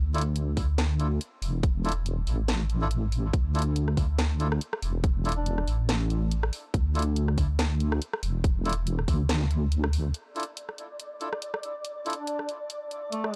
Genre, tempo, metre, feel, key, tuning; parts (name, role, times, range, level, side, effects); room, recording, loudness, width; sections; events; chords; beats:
deep dubstep; 141 BPM; 4/4; swing 56% on 16ths, half-time; D minor; A4 = 442 Hz
deep soft wobble bass; bass; 0.0-10.1 s; E1 to D2; -28 LUFS; equal; chorus, tube saturation
melodica; stabs; 0.1-12.1 s; D4 to A4; -38 LUFS; equal; dub echo
garage drum kit; drums; 0.1-13.4 s; hi-hat, rim click, snare drum; -35 LUFS; equal
electronic kick drum; drums; 0.6-9.2 s; -28 LUFS; equal
mellow duduk; melody; 5.4-5.7, 12.2-13.4 s; A3 to D4; -38 LUFS; equal; dub echo
flickering grainy texture; texture; 10.3-13.4 s; D5; -39 LUFS; equal; built-in reverb
little or no reverb; dry, gritty hardware recording, cassette tape; -28 LUFS; mono
0.0-10.1 A section; 10.1-13.4 B section
band accent 9.8
0.0 Dsus2; 10.1 N.C.
0.36 0.78 1.21 | 1.63 2.06 2.48 2.91 | 3.33 3.76 4.19 4.61 | 5.04 5.46 5.89 6.31 | 6.74 7.17 7.59 8.02 | 8.44 8.87 9.29 9.72 | 10.14 10.57 10.99 11.42 | 11.85 12.27 12.70 13.12